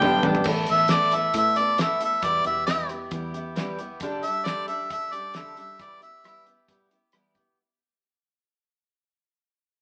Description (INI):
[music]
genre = folk rock and heartland rock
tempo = 135 BPM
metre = 4/4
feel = straight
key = unclear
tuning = A4 = 439 Hz
[part]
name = warm harmonica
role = melody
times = 0.0-6.5 s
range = D5 to G5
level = -26 LUFS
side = equal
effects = none
[part]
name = picked steel-string acoustic guitar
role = accompaniment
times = 0.0-7.6 s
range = G2 to A4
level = -33 LUFS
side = equal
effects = none
[part]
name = mellow tonewheel organ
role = sustained chords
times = 0.0-0.5 s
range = B3 to B4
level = -36 LUFS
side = equal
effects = none
[part]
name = electric guitar through a small old amp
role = riff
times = 0.0-0.5 s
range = G3 to G4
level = -29 LUFS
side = equal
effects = none
[part]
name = fingered electric bass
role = bass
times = 0.0-4.0 s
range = E1 to A2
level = -34 LUFS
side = equal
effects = none
[part]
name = damped 70s drum kit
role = drums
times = 0.0-7.5 s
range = crash cymbal, hi-hat, kick drum, rim click, snare drum, toms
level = -32 LUFS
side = equal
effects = none
[sound]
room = moderate stone room reverb, RT60 1.5 s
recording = band playing live in one room, small speaker sound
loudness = -24 LUFS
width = mono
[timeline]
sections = 0.5-7.6 A section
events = drum fill 0.0-0.5; fade-out 0.5-7.6; harmonica solo 0.5-7.6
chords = 0.5 Asus2; 2.2 Em; 4.0 Gsus2; 5.8 Em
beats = 0.03 | 0.47 0.91 1.35 1.79 | 2.23 2.67 3.12 3.56 | 4.00 4.45 4.89 5.34 | 5.79 6.23 6.68 7.13